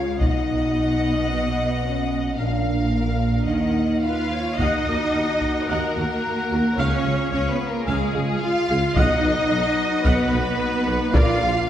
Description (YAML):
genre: cinematic, epic orchestral film score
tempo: 110 BPM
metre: 4/4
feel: straight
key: Eb minor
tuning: A4 = 439 Hz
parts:
  - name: clear symphonic violin section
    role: melody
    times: 0.0-11.7 s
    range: Ab4 to F#5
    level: -30 LUFS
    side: left 4 dB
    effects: none
  - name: warm symphonic violin section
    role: second line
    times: 0.0-11.7 s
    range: Ab4 to F5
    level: -28 LUFS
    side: left 1 dB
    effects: none
  - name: warm symphonic viola section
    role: accompaniment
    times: 0.0-11.5 s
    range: D4 to Gb5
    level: -30 LUFS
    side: right 1 dB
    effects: none
  - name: dark French horn section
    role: sustained chords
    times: 0.0-11.7 s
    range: F3 to Gb4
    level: -28 LUFS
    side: left 1 dB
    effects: none
  - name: rich symphonic cello section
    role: bass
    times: 0.0-11.7 s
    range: Bb2 to F4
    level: -25 LUFS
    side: right 1 dB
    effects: none
  - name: rich symphonic double bass section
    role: bass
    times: 0.0-11.5 s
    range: Bb1 to Eb2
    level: -27 LUFS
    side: right 1 dB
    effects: none
  - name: taiko ensemble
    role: drums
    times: 0.2-1.3, 4.6-5.7, 9.0-11.6 s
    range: none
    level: -23 LUFS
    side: equal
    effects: none
  - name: clear woodwind section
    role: sustained chords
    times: 4.6-11.7 s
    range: Bb3 to Gb5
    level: -30 LUFS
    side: left 1 dB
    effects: none
  - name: warm tuba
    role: bass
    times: 4.6-11.5 s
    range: Bb1 to Eb2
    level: -28 LUFS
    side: right 2 dB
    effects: none
room: wet scoring stage reverb, RT60 1.6 s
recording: heard from further back in the room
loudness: -19 LUFS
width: side -11 dB against mid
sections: 0.0-4.6 A section; 4.6-11.7 A section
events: none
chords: 0.2 B; 2.4 Bb; 3.5 Ebm; 6.8 Db; 9.0 B; 11.1 Bb